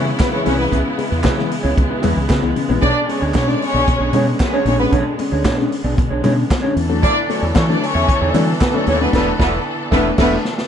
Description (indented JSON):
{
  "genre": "disco",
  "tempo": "114 BPM",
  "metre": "4/4",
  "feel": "straight",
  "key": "B dorian",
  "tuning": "A4 = 440 Hz",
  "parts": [
    { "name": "dark concert grand piano", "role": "accompaniment", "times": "0.0-10.4 s", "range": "B2 to C#4", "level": "-22 LUFS", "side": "left 5 dB", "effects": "none" },
    { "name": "mellow electric guitar", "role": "accompaniment", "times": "0.0-10.4 s", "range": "D4 to E5", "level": "-23 LUFS", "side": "right 3 dB", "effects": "harmonic tremolo" },
    { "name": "rich studio string section", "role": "sustained chords", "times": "0.0-10.7 s", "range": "C#3 to A4", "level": "-24 LUFS", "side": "equal", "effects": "none" },
    { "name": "fingered electric bass", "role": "bass", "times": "0.0-10.4 s", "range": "E1 to E3", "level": "-20 LUFS", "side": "right 1 dB", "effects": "none" },
    { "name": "warm symphonic violin section", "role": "second line", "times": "0.2-10.4 s", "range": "B3 to D5", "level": "-20 LUFS", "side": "equal", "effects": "none" },
    { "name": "vintage drum kit", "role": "drums", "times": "0.2-10.7 s", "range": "crash cymbal, hi-hat, kick drum, snare drum", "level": "-20 LUFS", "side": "equal", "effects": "none" },
    { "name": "congas", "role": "percussion", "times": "0.2-9.0 s", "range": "none", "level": "-26 LUFS", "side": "left 7 dB", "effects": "none" },
    { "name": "group handclap", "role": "percussion", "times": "0.2-8.7 s", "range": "none", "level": "-34 LUFS", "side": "right 3 dB", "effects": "none" }
  ],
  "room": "light reverb",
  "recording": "nothing above 10.4 kHz",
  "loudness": "-14 LUFS",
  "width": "side -8 dB against mid",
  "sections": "0.0-10.7 A section",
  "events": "band accent 9.1-10.7; drum fill 10.2-10.7",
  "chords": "0.0 C#m7; 2.8 Bm69; 6.8 E7sus4",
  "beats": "0.20 | 0.72 1.25 1.77 2.30 | 2.83 3.35 3.88 4.40 | 4.93 5.45 5.98 6.50 | 7.03 7.55 8.08 8.61 | 9.13 9.65 10.18"
}